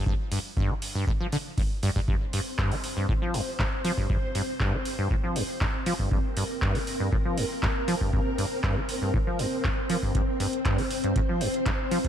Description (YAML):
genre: acid house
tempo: 119 BPM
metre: 4/4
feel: straight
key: G minor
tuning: A4 = 440 Hz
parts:
  - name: acid bass, saw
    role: riff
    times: 0.0-12.1 s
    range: F2 to G3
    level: -29 LUFS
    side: equal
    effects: tube saturation, lush chorus, digital delay
  - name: electronic kick drum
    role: drums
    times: 0.1-12.1 s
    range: none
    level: -28 LUFS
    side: equal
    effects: none
  - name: booming analog drum machine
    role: drums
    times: 0.3-12.1 s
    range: handclaps, hi-hat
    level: -34 LUFS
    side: right 1 dB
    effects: none
  - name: string machine, full ensemble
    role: sustained chords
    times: 2.1-12.1 s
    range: C4 to C5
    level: -31 LUFS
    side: equal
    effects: ensemble chorus, sidechain pumping
room: light reverb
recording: none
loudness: -25 LUFS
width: side -10 dB against mid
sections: 0.0-12.1 A section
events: none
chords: 0.0 Gm7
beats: | 0.07 0.57 1.07 1.58 | 2.08 2.59 3.09 3.59 | 4.10 4.60 5.11 5.61 | 6.12 6.62 7.12 7.63 | 8.13 8.64 9.14 9.64 | 10.15 10.65 11.16 11.66